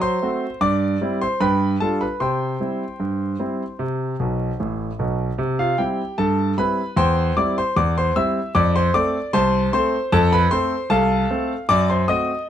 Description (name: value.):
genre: ragtime piano.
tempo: 76 BPM.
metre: 2/4.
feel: straight.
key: C major.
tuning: A4 = 440 Hz.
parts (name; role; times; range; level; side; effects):
clear concert grand piano; solo; 0.0-12.5 s; A1 to E6; -18 LUFS; equal; none.
room: light reverb.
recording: close, detailed microphones, vinyl crackle.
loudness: -18 LUFS.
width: side -10 dB against mid.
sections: 0.0-5.4 A section; 5.4-12.5 A section.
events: grand piano fill 4.2-5.4.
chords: 0.0 F#dim; 0.6 C/G; 1.4 G7; 2.2 C; 7.0 C/E; 8.6 F; 11.7 F#dim7.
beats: | 0.63 1.42 | 2.21 3.01 | 3.81 4.60 | 5.39 6.19 | 6.98 7.76 | 8.55 9.34 | 10.12 10.91 | 11.69 12.48.